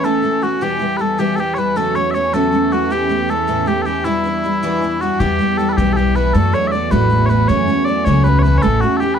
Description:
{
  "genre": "celtic folk, Celtic jig",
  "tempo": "105 BPM (dotted quarters)",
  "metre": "6/8",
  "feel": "straight",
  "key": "E dorian",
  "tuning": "A4 = 440 Hz",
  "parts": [
    { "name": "mellow small bagpipes", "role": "melody", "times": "0.0-9.2 s", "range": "E4 to E5", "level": "-19 LUFS", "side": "left 1 dB", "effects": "none" },
    { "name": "mellow accordion", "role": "second line", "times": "0.0-9.2 s", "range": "E4 to D5", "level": "-23 LUFS", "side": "left 1 dB", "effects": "none" },
    { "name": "picked twelve-string acoustic guitar", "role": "accompaniment", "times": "0.0-9.2 s", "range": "E2 to F#4", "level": "-18 LUFS", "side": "right 1 dB", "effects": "none" },
    { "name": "rich chamber string section", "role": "drone", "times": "0.0-9.2 s", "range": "E2 to E3", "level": "-26 LUFS", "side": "right 4 dB", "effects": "none" },
    { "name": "upright bass", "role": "bass", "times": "5.2-8.8 s", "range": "A1 to F#2", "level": "-16 LUFS", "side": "left 1 dB", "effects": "none" }
  ],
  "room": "light reverb",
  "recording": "dark, warm production",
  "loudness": "-14 LUFS",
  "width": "side -8 dB against mid",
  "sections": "0.0-5.2 A section; 5.2-9.2 A section",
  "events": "none",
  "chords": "0.0 A; 0.6 Em; 1.8 F#m; 2.9 A; 4.1 Em7; 5.2 Em; 6.3 D; 7.5 F#m; 8.6 A",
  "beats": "0.05 | 0.62 1.19 | 1.76 2.34 | 2.91 3.48 | 4.06 4.63 | 5.20 5.77 | 6.34 6.92 | 7.49 8.06 | 8.63"
}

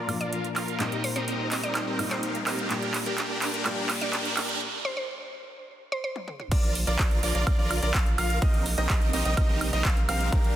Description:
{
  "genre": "EDM, festival progressive house",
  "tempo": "126 BPM",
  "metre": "4/4",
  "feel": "straight",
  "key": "unclear",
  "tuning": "A4 = 440 Hz",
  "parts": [
    { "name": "felt-muted upright piano", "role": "accompaniment", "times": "0.0-4.6 s", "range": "Bb2 to G4", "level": "-34 LUFS", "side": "left 3 dB", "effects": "sidechain pumping" },
    { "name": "dark chamber string section", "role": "sustained chords", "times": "0.0-10.6 s", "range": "Bb2 to Bb4", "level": "-38 LUFS", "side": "equal", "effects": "sidechain pumping, low-pass filter" },
    { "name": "big supersaw lead", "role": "riff", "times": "0.0-10.6 s", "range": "C4 to F5", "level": "-32 LUFS", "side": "right 1 dB", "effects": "phaser, sidechain pumping, low-pass filter, digital delay" },
    { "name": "riser", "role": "sound effects", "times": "1.0-4.6 s", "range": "none", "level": "-35 LUFS", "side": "equal", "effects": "none" },
    { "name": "big-room dance drum kit", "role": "drums", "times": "0.1-10.5 s", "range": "crash cymbal, handclaps, hi-hat, toms, woodblock", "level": "-31 LUFS", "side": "right 2 dB", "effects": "none" },
    { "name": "mallet-like synth pluck", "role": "melody", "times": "0.2-6.1 s", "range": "C5 to D5", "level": "-35 LUFS", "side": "equal", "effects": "chorus, digital delay" },
    { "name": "warm grand piano", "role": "arpeggios", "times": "6.5-10.6 s", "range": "Bb4 to F5", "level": "-33 LUFS", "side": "equal", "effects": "sidechain pumping, digital delay" },
    { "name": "saturated sub bass", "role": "bass", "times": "6.5-10.6 s", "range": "Bb1", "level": "-29 LUFS", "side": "equal", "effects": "sidechain pumping" },
    { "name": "electronic kick drum", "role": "drums", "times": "6.5-10.4 s", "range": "none", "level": "-24 LUFS", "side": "equal", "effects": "none" }
  ],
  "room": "light reverb",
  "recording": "dense, heavily limited modern master, high-pass filter",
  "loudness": "-24 LUFS",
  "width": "side -12 dB against mid",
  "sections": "0.0-6.5 A section; 6.5-10.6 B section",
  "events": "build-up 0.0-6.5; drum fill 0.0-4.6, 6.2-6.5; riser 1.0-4.6; break 4.6-6.5; drop 6.5-10.6",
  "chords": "0.0 Bb; 0.8 Eb6/Bb; 2.7 Gm/Bb; 4.6 N.C.; 6.5 Bb; 8.4 Eb6/Bb",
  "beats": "0.33 | 0.80 1.28 1.75 2.23 | 2.71 3.18 3.66 4.13 | 4.61 5.09 5.56 6.04 | 6.52 6.99 7.47 7.94 | 8.42 8.90 9.37 9.85 | 10.32"
}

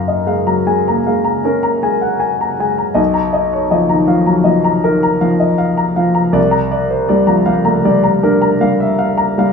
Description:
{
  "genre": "classical, impressionist solo piano",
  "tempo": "53 BPM (dotted quarters)",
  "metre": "9/8",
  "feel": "rubato",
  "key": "unclear",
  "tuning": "A4 = 440 Hz",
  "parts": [
    { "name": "warm grand piano", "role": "solo", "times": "0.0-9.5 s", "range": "B1 to Bb5", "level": "-12 LUFS", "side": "left 1 dB", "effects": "none" }
  ],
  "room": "moderate studio reverb, RT60 0.8 s",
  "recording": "small room ambience",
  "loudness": "-12 LUFS",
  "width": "side -5 dB against mid",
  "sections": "0.0-9.5 A section",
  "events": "none",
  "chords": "0.0 Gbmaj9; 3.0 Bmaj7#11; 6.4 C9sus4",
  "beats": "0.68 1.86 | 2.99 4.11 5.25 | 6.37 7.49 8.62"
}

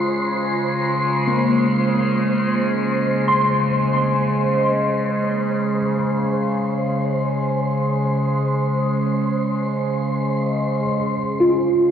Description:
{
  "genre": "ambient",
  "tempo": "free time",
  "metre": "none",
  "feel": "none",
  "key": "Db major",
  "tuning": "A4 = 441 Hz",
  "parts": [
    { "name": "tine electric piano", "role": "arpeggios", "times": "0.0-11.9 s", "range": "Bb3 to C6", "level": "-21 LUFS", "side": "equal", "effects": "ensemble chorus, diffuse ambient delay" },
    { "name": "overtone-sweeping drone", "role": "drone", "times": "0.0-11.9 s", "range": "Db3 to Ab3", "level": "-20 LUFS", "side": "equal", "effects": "chorus, built-in reverb" },
    { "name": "wind-like tuned noise texture", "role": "texture", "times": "0.0-10.9 s", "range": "C5 to C6", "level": "-24 LUFS", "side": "equal", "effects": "built-in reverb, lush chorus" }
  ],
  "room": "wet lush hall reverb, RT60 2.8 s",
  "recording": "dreamy mix soaked in reverb",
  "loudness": "-18 LUFS",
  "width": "side -8 dB against mid",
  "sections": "0.0-10.8 A section; 10.8-11.9 B section",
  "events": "none",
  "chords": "0.0 Dbmaj7; 10.8 Db",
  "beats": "free time"
}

